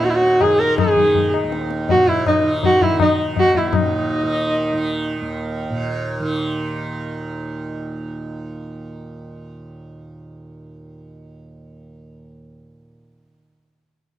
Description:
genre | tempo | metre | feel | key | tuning
indian classical, Hindustani | 164 BPM | 4/4 | straight | Eb raga bhairavi | A4 = 439 Hz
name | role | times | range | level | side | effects
warm sarangi | melody | 0.0-5.2 s | Eb4 to Bb4 | -17 LUFS | right 1 dB | none
tanpura | drone | 0.0-13.3 s | Eb2 to Eb3 | -26 LUFS | right 2 dB | none
tabla | percussion | 0.0-3.9 s | none | -21 LUFS | left 6 dB | none
room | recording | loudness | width
little or no reverb | dry, close 1970s-style studio recording | -17 LUFS | side -13 dB against mid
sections
0.0-3.7 A section; 3.7-6.6 B section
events
speeding up 0.0-6.6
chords
none

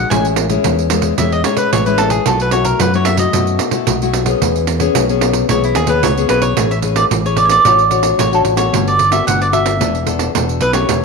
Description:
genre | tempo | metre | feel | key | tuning
samba and choro | 111 BPM | 4/4 | straight | E major, A major from 6.6 s | A4 = 440 Hz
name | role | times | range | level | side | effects
cavaquinho | melody | 0.0-11.0 s | E4 to G#5 | -16 LUFS | right 2 dB | none
nylon-string guitar | accompaniment | 0.0-11.0 s | A2 to C#5 | -17 LUFS | left 9 dB | none
fingered electric bass | bass | 0.0-11.0 s | E1 to F#2 | -19 LUFS | equal | none
pandeiro | percussion | 0.1-11.0 s | none | -18 LUFS | right 11 dB | none
room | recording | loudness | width
moderate echo chamber reverb, RT60 1.4 s, studio ambience | 1960s-style stereo with parts hard left and right | -12 LUFS | side -4 dB against mid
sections
0.0-6.6 A section; 6.6-11.0 B section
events
cavaquinho solo 0.0-6.6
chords
0.1 Amaj7; 2.3 B7sus4; 4.4 E6; 6.6 Amaj9; 7.6 Dmaj7/A; 8.7 Gmaj9; 9.8 E7sus4

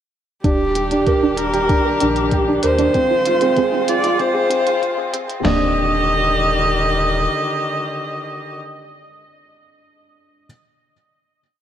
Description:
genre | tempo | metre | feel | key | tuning
piano and strings electronica | 96 BPM | 4/4 | straight | Eb major | A4 = 440 Hz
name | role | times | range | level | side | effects
warm viola | melody | 0.4-8.6 s | G4 to Eb5 | -19 LUFS | right 1 dB | none
soft round pluck | arpeggios | 0.4-5.7 s | Bb3 to Bb4 | -26 LUFS | right 4 dB | chorus, sidechain pumping, tape echo
felt-muted upright piano | riff | 0.4-10.5 s | C4 to Bb4 | -21 LUFS | right 1 dB | tape echo
warm sub bass | bass | 0.4-7.3 s | Eb1 to Eb2 | -26 LUFS | equal | sidechain pumping
electronic hi-hat | drums | 0.4-5.4 s | none | -30 LUFS | right 1 dB | none
lo-fi sampler-style drum kit | drums | 0.4-5.6 s | crash cymbal, kick drum, snare drum, toms | -21 LUFS | equal | none
warm string quartet | sustained chords | 0.5-8.6 s | D3 to G4 | -24 LUFS | left 3 dB | none
room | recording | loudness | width
moderate lush hall reverb, RT60 1.9 s | high-pass filter | -15 LUFS | side -10 dB against mid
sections
0.4-5.4 build; 5.4-7.9 final chord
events
build-up 0.4-5.4; filter sweep on synth arpeggio sound 0.4-5.4; filter sweep 0.4-5.4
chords
0.4 Ebmaj7; 2.9 Fm7/Eb; 5.4 Ebmaj7

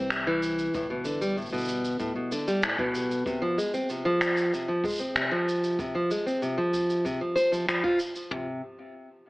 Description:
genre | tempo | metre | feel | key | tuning
folktronica | 95 BPM | 4/4 | straight | unclear | A4 = 439 Hz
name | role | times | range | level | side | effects
fingerpicked plugged-in steel-string acoustic guitar | arpeggios | 0.0-8.6 s | A2 to C5 | -26 LUFS | equal | tape echo
warm sub bass | bass | 0.0-3.2 s | D1 to C2 | -44 LUFS | equal | none
finger snaps and shaker | drums | 0.1-8.3 s | none | -31 LUFS | equal | none
jazz brush drum kit | drums | 0.7-8.5 s | kick drum, toms | -41 LUFS | equal | none
room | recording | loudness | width
wet studio reverb, RT60 0.5 s | AM radio sound | -25 LUFS | side -21 dB against mid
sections
0.0-8.3 A section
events
none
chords
0.0 C; 0.7 Gadd9; 3.3 F5; 8.3 N.C.

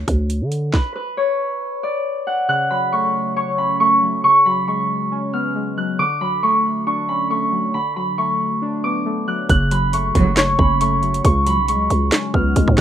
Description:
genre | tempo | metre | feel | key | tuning
hip hop, trap | 137 BPM | 4/4 | half-time | F# minor | A4 = 440 Hz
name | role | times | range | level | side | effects
growling 808-style bass | bass | 0.0-0.7, 9.5-12.8 s | F#1 to D3 | -19 LUFS | right 1 dB | none
trap drum kit | drums | 0.1-0.8, 9.5-12.8 s | handclaps, hi-hat, kick drum, rim click, snare drum | -18 LUFS | right 1 dB | vintage 12-bit sampler grit
Celtic harp | melody | 0.7-12.8 s | B4 to F#6 | -18 LUFS | equal | low-pass filter
warbly lo-fi synth keys | accompaniment | 2.5-12.8 s | C#3 to C#5 | -23 LUFS | left 1 dB | chorus, low-pass filter
dark chamber string section | stabs | 10.2-10.5 s | C#2 to F#3 | -21 LUFS | right 4 dB | none
room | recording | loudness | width
light reverb | rough home demo mix | -16 LUFS | side -10 dB against mid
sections
0.0-2.5 A section; 2.5-12.8 B section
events
break 0.0-0.7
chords
0.0 N.C.; 2.5 F#m; 4.2 C#7sus4; 6.0 Dmaj7; 7.7 Bm7; 9.5 F#m; 11.2 C#7sus4

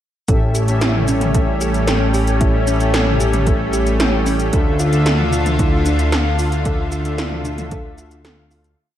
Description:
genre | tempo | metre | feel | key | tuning
synthwave | 113 BPM | 4/4 | straight | D harmonic minor | A4 = 441 Hz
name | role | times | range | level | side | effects
lush unison pad | sustained chords | 0.3-8.7 s | D3 to F4 | -22 LUFS | equal | chorus, sidechain pumping
thumb-piano-like synth pluck | arpeggios | 0.3-8.8 s | C#4 to A4 | -25 LUFS | right 3 dB | chorus, digital delay
mellow synth brass | stabs | 0.3-8.7 s | A2 to G5 | -24 LUFS | left 4 dB | chorus, digital delay
fat analog bass | bass | 0.3-8.8 s | A1 to D2 | -19 LUFS | equal | none
80s electronic pad drums | drums | 0.3-8.8 s | hi-hat, shaker, snare drum, toms | -23 LUFS | equal | gated reverb on snare and toms
electronic kick drum | drums | 0.3-7.8 s | none | -19 LUFS | equal | none
room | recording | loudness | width
light reverb | dark, warm production | -14 LUFS | side -11 dB against mid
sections
0.3-8.8 chorus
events
fade-out 5.9-8.8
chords
0.3 A7; 4.5 Dmadd9

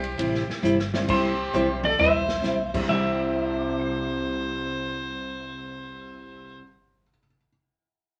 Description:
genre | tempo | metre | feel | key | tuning
country, western swing | 133 BPM | 4/4 | swing 68% on 8ths | C major | A4 = 445 Hz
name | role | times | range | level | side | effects
clean lap steel guitar | melody | 0.0-6.6 s | C5 to E5 | -28 LUFS | equal | none
rich fiddle | second line | 0.0-6.6 s | G4 to C5 | -36 LUFS | equal | none
upright bass | bass | 0.0-6.6 s | G1 to C2 | -39 LUFS | equal | none
swinging big-band drum kit | drums | 0.0-2.8 s | crash cymbal, hi-hat, kick drum, ride cymbal, snare drum, toms | -34 LUFS | equal | none
picked steel-string acoustic guitar | accompaniment | 0.2-6.6 s | C3 to G4 | -30 LUFS | equal | none
honky-tonk upright piano | accompaniment | 0.9-7.5 s | C2 to C7 | -35 LUFS | equal | none
room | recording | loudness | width
wet studio reverb, RT60 0.6 s | none | -25 LUFS | mono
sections
0.0-1.1 A section; 1.1-2.9 B section; 2.9-6.5 C section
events
drum fill 0.6-1.1, 1.5-2.4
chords
0.0 C

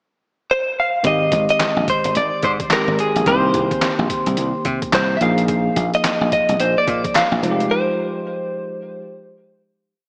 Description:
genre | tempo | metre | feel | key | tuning
R&B, new jack swing | 108 BPM | 4/4 | swing 61% on 16ths | unclear | A4 = 440 Hz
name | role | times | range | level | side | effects
direct-recorded clean electric guitar | melody | 0.5-9.6 s | Ab4 to F5 | -22 LUFS | equal | lush chorus, tape echo
barky tine electric piano | accompaniment | 1.0-10.0 s | Eb3 to Ab4 | -26 LUFS | equal | lush chorus
dry thumbed slap bass | bass | 1.0-7.7 s | F1 to C3 | -24 LUFS | equal | none
boom bap sampler-style drum kit | drums | 1.0-7.7 s | handclaps, hi-hat, kick drum, snare drum | -26 LUFS | equal | none
group handclap | percussion | 6.0-7.3 s | none | -35 LUFS | equal | none
room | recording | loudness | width
wet lush hall reverb, RT60 2.0 s | dreamy mix soaked in reverb, small speaker sound | -19 LUFS | mono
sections
0.0-1.0 pickup bar; 1.0-9.9 verse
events
break 7.7-9.9; fade-out 7.7-9.9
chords
0.0 N.C.; 1.0 Abmaj7; 3.3 Cm7; 5.2 Bb7sus4; 7.4 Fm9

